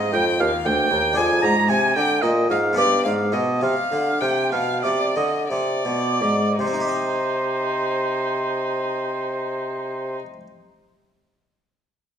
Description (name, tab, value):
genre	classical, baroque-style sonata movement with continuo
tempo	54-78 BPM (dotted quarters)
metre	12/8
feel	straight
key	C minor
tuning	A4 = 442 Hz
part	rich violin	melody	0.0-10.2 s	Eb4 to Bb5	-27 LUFS	left 6 dB	none
part	clear oboe	second line	0.0-10.2 s	C5 to Bb5	-24 LUFS	right 4 dB	none
part	harpsichord	accompaniment	0.0-10.5 s	D2 to Eb5	-25 LUFS	left 1 dB	none
part	mellow bassoon	bass	0.0-10.2 s	D2 to D3	-24 LUFS	right 1 dB	none
room	wet recital hall reverb, RT60 1.5 s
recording	none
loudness	-19 LUFS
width	side -8 dB against mid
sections	0.0-6.6 A section; 6.6-11.0 B section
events	slowing down 0.7-6.6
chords	0.0 Cm; 1.2 Ddim/F; 2.8 G7; 6.6 Cm